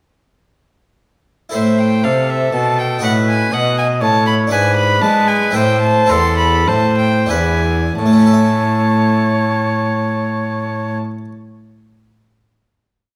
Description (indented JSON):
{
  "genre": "classical, baroque-style sonata movement with continuo",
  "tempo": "86-122 BPM",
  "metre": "3/4",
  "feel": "straight",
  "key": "unclear",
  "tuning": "A4 = 440 Hz",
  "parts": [
    { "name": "warm violin", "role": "melody", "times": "1.5-11.0 s", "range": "E5 to C6", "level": "-21 LUFS", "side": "equal", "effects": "none" },
    { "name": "clear oboe", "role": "second line", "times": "1.5-11.0 s", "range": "A4 to D#5", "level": "-22 LUFS", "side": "equal", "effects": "none" },
    { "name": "harpsichord", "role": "accompaniment", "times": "1.5-11.3 s", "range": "E2 to E5", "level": "-20 LUFS", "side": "equal", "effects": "none" },
    { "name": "rich cello", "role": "bass", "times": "1.5-11.0 s", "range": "E2 to G#3", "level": "-20 LUFS", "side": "equal", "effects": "none" }
  ],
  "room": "wet recital hall reverb, RT60 1.5 s",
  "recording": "none",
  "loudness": "-15 LUFS",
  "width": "mono",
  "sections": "1.5-8.0 A section; 8.0-12.1 final chord",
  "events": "slowing down 3.8-8.0",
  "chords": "1.5 Am; 3.0 B7/A; 4.5 E7/G#; 5.6 Am; 6.1 Am/E; 7.3 E7; 8.0 A",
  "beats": "| 1.54 2.04 2.54 | 3.04 3.53 4.02 | 4.52 5.03 5.55 | 6.10 6.68 7.30 | 7.99 8.68 9.38 | 10.07 10.76"
}